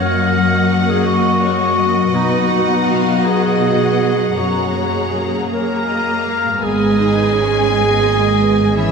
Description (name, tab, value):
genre	cinematic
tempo	52-57 BPM (dotted quarters)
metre	6/8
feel	rubato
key	F# major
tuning	A4 = 439 Hz
part	warm studio violin section	melody	0.0-8.9 s	B4 to A#5	-24 LUFS	left 5 dB	none
part	rich studio violin section	second line	0.0-8.9 s	B4 to F#5	-26 LUFS	left 2 dB	none
part	warm clarinet	second line	0.0-8.9 s	D#4 to A#4	-18 LUFS	right 2 dB	none
part	rich studio viola section	accompaniment	0.0-8.9 s	A#3 to G#4	-21 LUFS	right 2 dB	none
part	concert harp	arpeggios	0.0-8.9 s	F#2 to C#5	-22 LUFS	left 6 dB	none
part	warm studio cello section	bass	0.0-8.9 s	F#2 to A#3	-21 LUFS	right 2 dB	none
part	warm studio double bass section	bass	6.6-8.9 s	G#1	-21 LUFS	right 4 dB	none
room	wet church reverb, RT60 3.6 s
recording	recorded in a church or concert hall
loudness	-13 LUFS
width	side -5 dB against mid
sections	0.0-6.6 A section; 6.6-8.9 B section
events	none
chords	0.0 D#m/F#; 2.1 B; 4.4 F#add9; 6.6 G#m